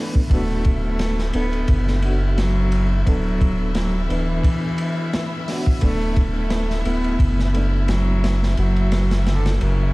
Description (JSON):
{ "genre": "trip hop", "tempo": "87 BPM", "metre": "4/4", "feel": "swing 54% on 16ths", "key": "B minor", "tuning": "A4 = 443 Hz", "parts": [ { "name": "rich cello", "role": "melody", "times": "0.0-9.9 s", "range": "C#3 to B3", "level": "-25 LUFS", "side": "equal", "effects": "tape echo" }, { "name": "reed electric piano", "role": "accompaniment", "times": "0.0-9.9 s", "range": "F#3 to B4", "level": "-28 LUFS", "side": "equal", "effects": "fast tremolo, tape echo" }, { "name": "rich studio string section", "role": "sustained chords", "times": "0.0-9.9 s", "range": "D3 to E5", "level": "-34 LUFS", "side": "left 2 dB", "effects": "none" }, { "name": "crunchy breakbeat drum kit", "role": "drums", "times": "0.1-9.8 s", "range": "hi-hat, kick drum, ride cymbal, snare drum", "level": "-23 LUFS", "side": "equal", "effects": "none" }, { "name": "soft dub sub bass", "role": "bass", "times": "0.3-9.9 s", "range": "D1 to F#1", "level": "-20 LUFS", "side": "equal", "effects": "none" } ], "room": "studio ambience", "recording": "vinyl crackle", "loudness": "-17 LUFS", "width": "side -22 dB against mid", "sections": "0.0-9.9 A section", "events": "none", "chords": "0.0 Bm7/D; 8.6 F#7" }